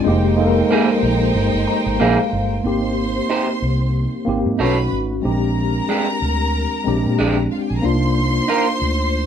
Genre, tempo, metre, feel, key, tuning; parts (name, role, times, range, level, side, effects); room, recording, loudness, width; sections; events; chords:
soul; 93 BPM; 4/4; swing 58% on 16ths; F dorian; A4 = 440 Hz
rich studio violin section; second line; 0.0-9.3 s; Eb4 to C6; -24 LUFS; right 1 dB
mellow tine electric piano; accompaniment; 0.0-9.3 s; Ab3 to Bb5; -20 LUFS; left 1 dB; medium stereo tremolo
vintage muted fingered electric bass; bass; 0.1-9.2 s; F1 to Bb2; -21 LUFS; equal
electric guitar through a small old amp; riff; 0.7-8.7 s; Ab3 to C#5; -18 LUFS; right 4 dB
moderate studio reverb, RT60 0.5 s; band playing live in one room; -16 LUFS; side -8 dB against mid
0.0-2.6 A section; 2.6-9.3 B section
tine electric piano fill 1.4-2.6
0.1 Fm11; 2.6 Abmaj7; 4.6 B9; 5.2 Bb13; 7.8 Cm11